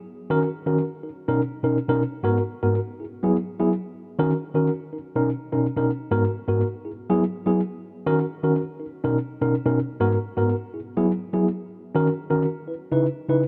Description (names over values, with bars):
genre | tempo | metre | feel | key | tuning
disco | 124 BPM | 4/4 | straight | unclear | A4 = 440 Hz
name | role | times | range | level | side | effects
mellow tine electric piano | solo | 0.3-13.4 s | G#2 to B4 | -24 LUFS | equal | none
room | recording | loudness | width
light reverb | none | -24 LUFS | mono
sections
0.0-13.5 A section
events
none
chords
0.1 D#m7; 1.0 Bmaj7; 2.0 G#m7; 3.0 F#7sus4; 3.9 D#m7; 4.9 Bmaj7; 5.9 G#m7; 6.9 F#7sus4; 7.8 D#m7; 8.8 Bmaj7; 9.8 G#m7; 10.7 F#7sus4; 11.7 D#m7; 12.7 C#m7